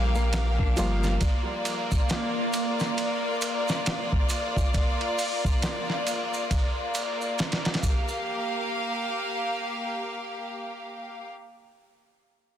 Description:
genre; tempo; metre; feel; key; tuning
trip hop; 68 BPM; 4/4; swing 60% on 16ths; G minor; A4 = 440 Hz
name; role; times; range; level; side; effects
overdriven reed electric piano; accompaniment; 0.0-1.2 s; F3 to F4; -34 LUFS; equal; tremolo, tape echo
clear studio violin section; sustained chords; 0.0-11.3 s; Bb3 to F5; -29 LUFS; left 1 dB; none
flamenco guitar; arpeggios; 0.0-1.0 s; F3 to D4; -38 LUFS; left 4 dB; vintage 12-bit sampler grit, tape echo
soft dub sub bass; bass; 0.0-1.2 s; G1 to Bb1; -25 LUFS; equal; none
backwards swelling texture; texture; 0.0-8.3 s; Bb3 to Bb4; -36 LUFS; right 1 dB; built-in reverb
maracas; percussion; 0.2-8.2 s; none; -38 LUFS; right 3 dB; none
dusty soul sampler-style drum kit; drums; 0.3-8.0 s; hi-hat, kick drum, ride cymbal, snare drum; -27 LUFS; equal; none
room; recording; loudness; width
little or no reverb; dense, heavily limited modern master; -25 LUFS; side -10 dB against mid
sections
0.0-8.3 A section; 8.3-11.8 B section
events
none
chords
0.0 Gm7; 1.2 Bb; 7.8 Gm7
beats
0.33 | 1.21 2.09 2.98 3.86 | 4.74 5.62 6.51 7.39 | 8.27 9.15 10.04 10.92

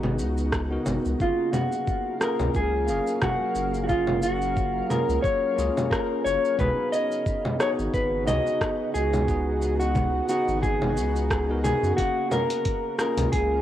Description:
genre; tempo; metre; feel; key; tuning
sunset chillout; 89 BPM; 4/4; swing 56% on 16ths; F# major; A4 = 440 Hz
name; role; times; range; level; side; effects
bell-like tine electric piano; accompaniment; 0.0-13.6 s; A#3 to E#5; -30 LUFS; equal; auto-pan, cassette tape
shimmering ambient pad; sustained chords; 0.0-13.6 s; C#3 to E#5; -34 LUFS; right 1 dB; chorus, built-in reverb, cassette tape
round analog bass; bass; 0.0-13.6 s; F#1 to F#2; -28 LUFS; equal; tube saturation
deep house drum kit; drums; 0.0-13.5 s; congas, hi-hat, rim click, shaker; -29 LUFS; equal; cassette tape
electronic kick drum; drums; 0.5-13.5 s; none; -29 LUFS; equal; cassette tape
mellow electric guitar; melody; 1.2-13.6 s; E#4 to D#5; -25 LUFS; left 1 dB; tape echo
room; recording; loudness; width
light reverb; home recording on cassette; -22 LUFS; side -12 dB against mid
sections
0.0-13.6 A section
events
none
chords
0.0 C#9sus4; 1.2 F#maj7; 6.6 C#9sus4; 12.0 F#maj7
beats
0.52 | 1.20 1.87 2.55 3.22 | 3.90 4.57 5.24 5.92 | 6.59 7.27 7.94 8.61 | 9.29 9.96 10.64 11.31 | 11.98 12.66 13.33

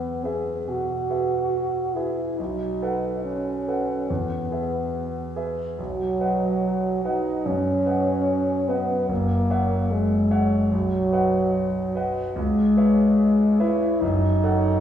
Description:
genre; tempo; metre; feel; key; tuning
classical, romantic duo for French horn and grand piano; 72 BPM; 4/4; uneven beats, rubato; E major; A4 = 445 Hz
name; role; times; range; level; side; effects
warm French horn; melody; 0.0-14.8 s; F#3 to G#4; -23 LUFS; equal; none
clear concert grand piano; accompaniment; 0.0-14.8 s; F#1 to F#5; -24 LUFS; right 1 dB; none
room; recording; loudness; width
wet recital hall reverb, RT60 1.5 s; heard from further back in the room, small room ambience; -21 LUFS; side -10 dB against mid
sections
0.0-14.8 A section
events
none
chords
0.0 E; 2.4 B7; 4.1 E; 5.8 B; 9.1 F#7; 10.7 B; 12.4 C#m7; 14.0 F#m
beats
0.67 1.52 | 2.38 3.24 4.09 4.94 | 5.78 6.63 7.46 8.28 | 9.10 9.92 10.73 11.55 | 12.37 13.18 14.02

